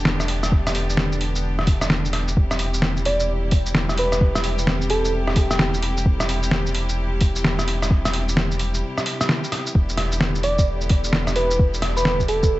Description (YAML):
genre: future garage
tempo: 130 BPM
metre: 4/4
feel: swing 63% on 16ths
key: E minor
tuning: A4 = 440 Hz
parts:
  - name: clear studio string section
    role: sustained chords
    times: 0.0-12.6 s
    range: C3 to G4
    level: -29 LUFS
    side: equal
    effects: vintage 12-bit sampler grit, sidechain pumping
  - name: warm sub bass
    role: bass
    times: 0.0-12.6 s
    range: E1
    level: -24 LUFS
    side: equal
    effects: sidechain pumping
  - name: lo-fi sampler-style drum kit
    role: drums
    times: 0.1-12.5 s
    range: hi-hat, rim click, shaker, snare drum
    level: -22 LUFS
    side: equal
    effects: none
  - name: electronic kick drum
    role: drums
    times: 0.5-12.5 s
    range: none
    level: -17 LUFS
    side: equal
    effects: none
  - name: soft struck synth lead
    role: melody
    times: 3.1-5.9, 10.4-12.6 s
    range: G4 to D5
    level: -24 LUFS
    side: right 1 dB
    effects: chorus, tape echo
room: light reverb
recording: vinyl crackle, nothing above 8.0 kHz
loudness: -18 LUFS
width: side -17 dB against mid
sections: 0.0-9.7 A section; 9.7-12.6 A section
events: break 8.8-9.7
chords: 0.0 Em7; 2.4 C/E; 9.7 Em7